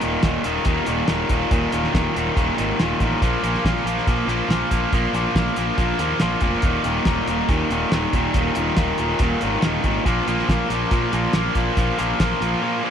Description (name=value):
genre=classic rock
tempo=140 BPM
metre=4/4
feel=straight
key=unclear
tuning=A4 = 440 Hz
part: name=biting overdriven guitar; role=riff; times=0.0-12.9 s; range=Eb2 to Bb3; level=-23 LUFS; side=left 10 dB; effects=none
part: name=distorted electric guitar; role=riff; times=0.0-12.9 s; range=Eb2 to Bb3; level=-24 LUFS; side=right 11 dB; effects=overdrive
part: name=fuzz fingered electric bass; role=bass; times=0.0-12.5 s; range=Eb1 to Bb2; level=-26 LUFS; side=equal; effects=overdrive
part: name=cloth-damped thuddy drum kit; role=drums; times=0.0-12.5 s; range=hi-hat, kick drum, snare drum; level=-23 LUFS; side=equal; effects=none
room=light reverb, studio reverb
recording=1960s-style stereo with parts hard left and right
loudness=-18 LUFS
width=side -8 dB against mid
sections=0.0-12.9 A section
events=none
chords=0.0 Eb5; 3.2 Bb5; 6.6 Eb5; 10.1 Bb5